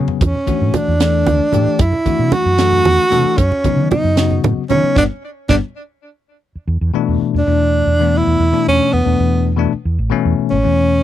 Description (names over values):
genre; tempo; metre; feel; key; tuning
electric jazz fusion; 76 BPM (dotted quarters); 6/8; straight; unclear; A4 = 440 Hz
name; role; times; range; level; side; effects
bell-like tine electric piano; accompaniment; 0.0-11.0 s; B2 to A4; -19 LUFS; left 10 dB; medium stereo tremolo
woody fretless electric bass; bass; 0.0-11.0 s; G1 to D#3; -17 LUFS; right 1 dB; none
tight funk drum kit; drums; 0.1-5.6 s; hi-hat, kick drum, snare drum, toms; -18 LUFS; right 1 dB; none
warm tenor saxophone; melody; 0.2-11.0 s; B3 to F#4; -16 LUFS; right 2 dB; none
congas; percussion; 0.2-5.6 s; none; -21 LUFS; right 5 dB; none
room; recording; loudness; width
little or no reverb; dry, close 1970s-style studio recording; -13 LUFS; side -12 dB against mid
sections
0.0-6.5 A section; 6.5-11.0 B section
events
drum fill 0.0, 5.0-6.5; band accent 5.0-6.5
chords
0.2 Em9; 1.8 E9sus4; 3.4 Badd9/F#; 5.0 G; 6.5 Asus24/E; 9.7 N.C.